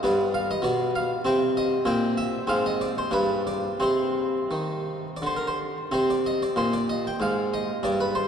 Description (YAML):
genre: classical, baroque-style suite movement for harpsichord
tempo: 84-101 BPM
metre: 3/4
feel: rubato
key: unclear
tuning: A4 = 440 Hz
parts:
  - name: harpsichord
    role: solo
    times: 0.0-8.3 s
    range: G2 to G5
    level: -23 LUFS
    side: equal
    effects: none
room: wet cathedral reverb, RT60 6.9 s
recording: dark, warm production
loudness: -23 LUFS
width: side -8 dB against mid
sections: 0.0-5.9 A section; 5.9-8.3 A section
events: none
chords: 0.0 G; 1.2 N.C.; 1.9 C7/Bb; 2.5 Ab6; 3.1 G; 3.8 Cm; 5.9 Abmaj9#11